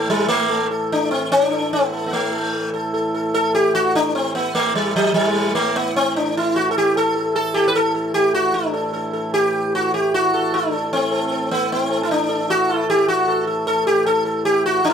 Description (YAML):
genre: indian classical, Hindustani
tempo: 151 BPM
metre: 4/4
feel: straight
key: A raga bageshri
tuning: A4 = 441 Hz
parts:
  - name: sitar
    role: melody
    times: 0.0-14.9 s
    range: F#3 to B4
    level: -17 LUFS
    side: equal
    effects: none
  - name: pedal harmonium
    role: drone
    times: 0.0-14.9 s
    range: A2 to E3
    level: -27 LUFS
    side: right 1 dB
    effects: none
room: light reverb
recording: close, detailed microphones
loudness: -17 LUFS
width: side -7 dB against mid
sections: 0.0-8.5 A section; 8.5-14.9 B section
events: speeding up 0.0-14.9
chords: none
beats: 0.09 | 0.50 0.91 1.32 1.72 | 2.13 2.53 2.94 3.34 | 3.75 4.15 4.55 4.95 | 5.36 5.76 6.16 6.56 | 6.96 7.36 7.75 8.15 | 8.55 8.95 9.34 9.74 | 10.13 10.53 10.92 11.31 | 11.71 12.10 12.49 12.88 | 13.27 13.66 14.05 14.44 | 14.83